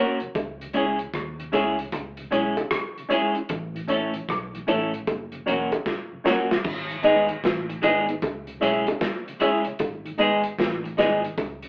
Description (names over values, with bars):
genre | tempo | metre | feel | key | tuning
roots reggae | 76 BPM | 4/4 | swing 65% on 16ths | C# minor | A4 = 440 Hz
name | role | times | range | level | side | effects
clean electric guitar | accompaniment | 0.0-11.2 s | F#3 to A#4 | -24 LUFS | equal | none
mellow tonewheel organ | accompaniment | 0.0-11.7 s | F#2 to F#4 | -33 LUFS | equal | chorus vibrato
warm upright piano | stabs | 0.0-11.2 s | C#4 to E5 | -23 LUFS | equal | none
crunchy breakbeat drum kit | drums | 0.2-11.7 s | crash cymbal, hi-hat, kick drum, rim click, snare drum | -28 LUFS | equal | vintage 12-bit sampler grit
vintage muted fingered electric bass | bass | 0.4-11.7 s | E1 to D#2 | -37 LUFS | equal | tube saturation
bongos | percussion | 0.4-11.6 s | none | -29 LUFS | equal | none
room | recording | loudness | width
wet studio reverb, RT60 0.6 s | band playing live in one room, cassette tape, telephone sound | -22 LUFS | side -39 dB against mid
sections
0.0-6.7 A section; 6.7-11.7 B section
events
drum fill 5.9-6.7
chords
0.3 C#m; 3.5 A; 5.1 F#; 6.7 G#m; 8.2 C#m; 9.8 G#m